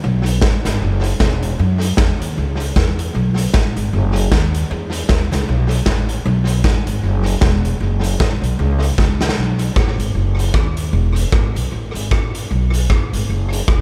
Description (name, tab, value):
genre	ska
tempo	154 BPM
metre	4/4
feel	swing 57% on 8ths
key	B mixolydian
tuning	A4 = 438 Hz
part	upright bass	bass	0.0-13.8 s	E1 to F#2	-20 LUFS	equal	none
part	raw garage drum kit	drums	0.3-13.8 s	hi-hat, kick drum, rim click, snare drum	-20 LUFS	equal	tape echo
room	little or no reverb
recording	none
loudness	-17 LUFS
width	mono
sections	0.0-9.4 A section; 9.4-13.8 B section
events	drum fill 9.0-9.4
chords	none